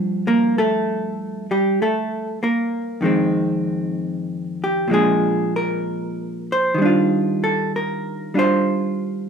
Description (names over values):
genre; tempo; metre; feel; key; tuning
jazz ballad; 64 BPM; 4/4; swing 69% on 8ths; Bb major; A4 = 440 Hz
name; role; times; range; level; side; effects
vintage hollow-body jazz guitar; solo; 0.0-9.3 s; F2 to C5; -18 LUFS; equal; none
room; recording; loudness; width
light reverb; minimal, uncompressed stereo recording; -18 LUFS; side -6 dB against mid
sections
0.0-9.3 A section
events
none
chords
0.0 Gm7; 3.0 Fm7; 4.9 Bb7; 6.8 Ebmaj9